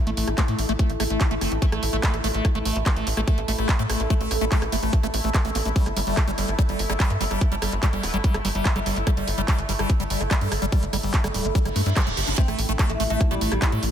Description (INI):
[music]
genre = psychedelic trance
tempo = 145 BPM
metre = 4/4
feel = straight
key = unclear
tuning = A4 = 437 Hz
[part]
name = bubbling stepped-filter texture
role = sustained chords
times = 0.0-13.9 s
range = A3 to E4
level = -30 LUFS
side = right 1 dB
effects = chorus, built-in reverb, vintage 12-bit sampler grit, sidechain pumping
[part]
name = impact and reverse cymbal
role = sound effects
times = 0.0-0.8, 11.7-12.4 s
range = none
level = -31 LUFS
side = right 4 dB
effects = none
[part]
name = liquid acid bass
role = riff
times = 0.1-13.8 s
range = G3 to G4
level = -29 LUFS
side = moving between left 4 dB and right 3 dB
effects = phaser, auto-pan, sidechain pumping, tape echo
[part]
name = tight sequencer bass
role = bass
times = 0.1-13.9 s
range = D1 to A2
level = -27 LUFS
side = equal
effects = none
[part]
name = drum and bass drum kit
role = drums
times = 0.1-13.9 s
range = handclaps, hi-hat, rim click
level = -29 LUFS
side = right 1 dB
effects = none
[part]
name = electronic kick drum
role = drums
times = 0.4-13.7 s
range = none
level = -21 LUFS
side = equal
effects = none
[part]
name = metallic wobble bass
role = second line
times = 1.4-2.0, 8.0-8.2 s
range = B3 to E4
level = -40 LUFS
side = left 4 dB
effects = none
[part]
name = oud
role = melody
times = 12.4-13.6 s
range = G3 to C4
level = -29 LUFS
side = left 1 dB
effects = phaser, sidechain pumping, digital delay
[sound]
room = light reverb, digital ambience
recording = none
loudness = -20 LUFS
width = side -9 dB against mid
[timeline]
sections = 0.0-13.9 A section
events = impact 0.0-0.8; reverse cymbal 11.7-12.4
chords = 0.0 A5; 5.8 G5; 12.4 A5